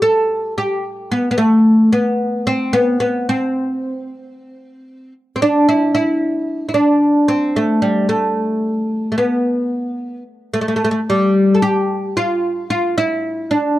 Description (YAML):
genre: turkish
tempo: 223 BPM (eighths)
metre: 9/8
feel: straight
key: C makam rast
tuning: A4 = 440 Hz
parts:
  - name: oud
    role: solo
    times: 0.0-13.8 s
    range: G3 to A4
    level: -14 LUFS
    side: equal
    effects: none
room: small room ambience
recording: dry, close 1970s-style studio recording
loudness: -14 LUFS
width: side -15 dB against mid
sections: 0.0-5.7 A section; 5.7-13.8 B section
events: none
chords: none